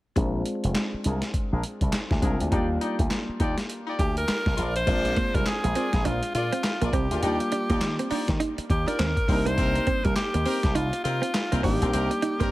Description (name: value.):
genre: R&B, new jack swing.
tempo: 102 BPM.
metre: 4/4.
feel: swing 60% on 16ths.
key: unclear.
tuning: A4 = 442 Hz.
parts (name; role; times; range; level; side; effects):
warm concert grand piano; accompaniment; 0.2-12.5 s; G3 to F4; -32 LUFS; left 1 dB; low-pass filter.
warm horn section; stabs; 0.2-12.5 s; C4 to D5; -34 LUFS; left 2 dB; low-pass filter.
slap bass with an envelope filter; bass; 0.2-12.5 s; F1 to Eb3; -27 LUFS; equal; none.
dusty soul sampler-style drum kit; drums; 0.2-12.5 s; crash cymbal, handclaps, hi-hat, kick drum, snare drum; -28 LUFS; equal; overdrive.
bright alto saxophone; melody; 4.0-12.5 s; F4 to C5; -28 LUFS; equal; none.
direct-recorded clean electric guitar; riff; 5.1-12.5 s; G3 to Eb4; -31 LUFS; right 4 dB; analog chorus.
room: light reverb, small room ambience.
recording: none.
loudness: -23 LUFS.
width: side -17 dB against mid.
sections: 0.2-4.9 A section; 4.9-12.5 B section.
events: filter sweep 0.2-4.9.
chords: 0.2 Bb7; 2.5 Ebmaj9; 4.6 Bb7; 7.2 Ebmaj9; 9.3 Cm7.